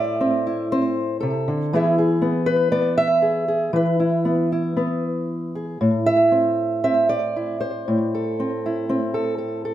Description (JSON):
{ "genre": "folk, solo fingerstyle acoustic guitar", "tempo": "118 BPM", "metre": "4/4", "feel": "rubato", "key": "A harmonic minor", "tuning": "A4 = 444 Hz", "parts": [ { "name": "fingerpicked old ladder-braced acoustic guitar", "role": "solo", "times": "0.0-9.7 s", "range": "A2 to E5", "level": "-19 LUFS", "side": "equal", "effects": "slapback echo" } ], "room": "light reverb", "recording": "close, detailed microphones", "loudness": "-19 LUFS", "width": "side -12 dB against mid", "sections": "0.0-9.7 A section", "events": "none", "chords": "0.0 Am; 1.7 E; 5.8 Am" }